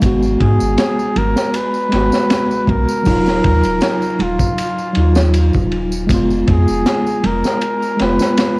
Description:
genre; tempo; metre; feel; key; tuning
trip hop; 79 BPM; 4/4; swing 54% on 16ths; Eb minor; A4 = 441 Hz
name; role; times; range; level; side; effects
mellow tine electric piano; accompaniment; 0.0-8.6 s; Gb3 to Gb4; -17 LUFS; equal; harmonic tremolo, cassette tape, tape echo
warm sub bass; bass; 0.0-8.2 s; Eb1 to Ab2; -17 LUFS; equal; none
crunchy breakbeat drum kit; drums; 0.0-8.6 s; hi-hat, kick drum, ride cymbal, snare drum; -19 LUFS; equal; cassette tape
tambourine and congas; percussion; 0.0-8.5 s; none; -27 LUFS; right 2 dB; none
trumpet with bucket mute; melody; 0.4-8.6 s; F4 to Cb5; -20 LUFS; equal; cassette tape
room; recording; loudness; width
studio reverb; home recording on cassette; -13 LUFS; side -25 dB against mid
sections
0.0-8.6 A section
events
none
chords
0.0 Abm7; 3.1 Ebmadd9; 6.1 Fdim

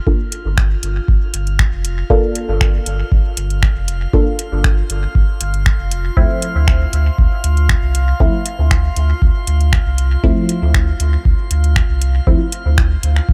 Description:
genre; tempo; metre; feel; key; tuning
dub techno; 118 BPM; 4/4; straight; G minor; A4 = 441 Hz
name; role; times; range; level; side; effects
filtered dub chord stab; stabs; 0.0-12.4 s; F3 to A4; -24 LUFS; equal; phaser, sidechain pumping, dub echo
drifting glass-harmonics texture; texture; 0.0-13.3 s; F4 to F6; -32 LUFS; equal; chorus, built-in reverb, sidechain pumping
warm sub bass; bass; 0.1-13.3 s; F1 to D2; -18 LUFS; equal; sidechain pumping
electronic kick drum; drums; 0.1-13.3 s; none; -17 LUFS; equal; overdrive
booming analog drum machine; drums; 0.3-13.3 s; finger snaps, hi-hat; -24 LUFS; equal; overdrive, dub echo
room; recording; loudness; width
digital ambience; none; -15 LUFS; mono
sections
0.0-13.3 A section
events
filter sweep on synth stab 0.0-13.3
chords
0.0 Gm7; 6.2 Dm7

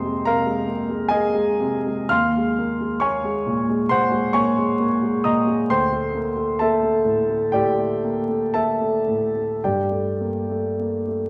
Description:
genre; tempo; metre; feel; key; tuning
classical, impressionist solo piano; 51-71 BPM; 4/4; rubato; unclear; A4 = 440 Hz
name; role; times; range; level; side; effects
warm grand piano; solo; 0.0-11.3 s; D2 to F6; -22 LUFS; equal; none
room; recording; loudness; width
wet recital hall reverb, RT60 1.4 s; dark, warm production, vinyl crackle; -21 LUFS; mono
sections
0.0-11.3 A section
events
none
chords
0.0 Fm11; 2.1 Ebm11; 5.7 D5; 9.6 Gmadd9

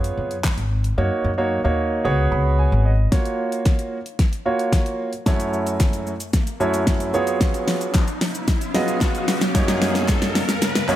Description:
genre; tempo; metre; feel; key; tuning
dance-pop; 112 BPM; 4/4; straight; F# major; A4 = 440 Hz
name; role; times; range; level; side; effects
warm concert grand piano; accompaniment; 0.0-11.0 s; F#2 to B5; -22 LUFS; right 2 dB; sidechain pumping
upright bass; bass; 0.0-3.1 s; G#1 to F#2; -20 LUFS; equal; sidechain pumping
pop drum kit; drums; 0.0-11.0 s; handclaps, hi-hat, kick drum, shaker, snare drum; -20 LUFS; equal; none
riser; sound effects; 5.0-11.0 s; none; -31 LUFS; left 1 dB; none
shimmering ambient pad; sustained chords; 8.2-11.0 s; F#2 to E#5; -29 LUFS; left 1 dB; chorus, built-in reverb, sidechain pumping
group handclap; percussion; 7.9-11.0 s; none; -36 LUFS; left 3 dB; none
room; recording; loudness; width
light reverb; none; -18 LUFS; side -13 dB against mid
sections
0.0-3.1 A section; 3.1-11.0 B section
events
silent gap 1.0-3.1; grand piano fill 2.0-3.1; build-up 3.1-11.0; drum fill 3.1-11.0; riser 5.0-11.0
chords
0.0 C#7; 1.0 D#m7/F#; 2.0 C#7sus4; 3.1 F#maj7; 5.3 A6/F#; 7.1 C#7/F#; 9.6 D#m7/F#

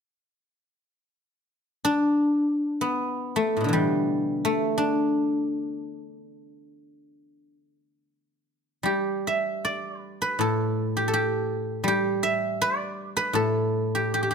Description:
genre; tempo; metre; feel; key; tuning
chinese traditional, Chinese solo plucked strings; free time; none; none; D zhi mode; A4 = 441 Hz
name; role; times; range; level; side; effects
guzheng; solo; 1.8-14.3 s; A2 to E5; -23 LUFS; equal; none
room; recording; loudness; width
light reverb; close, detailed microphones; -23 LUFS; side -6 dB against mid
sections
1.4-8.9 A section; 8.9-14.3 B section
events
none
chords
none

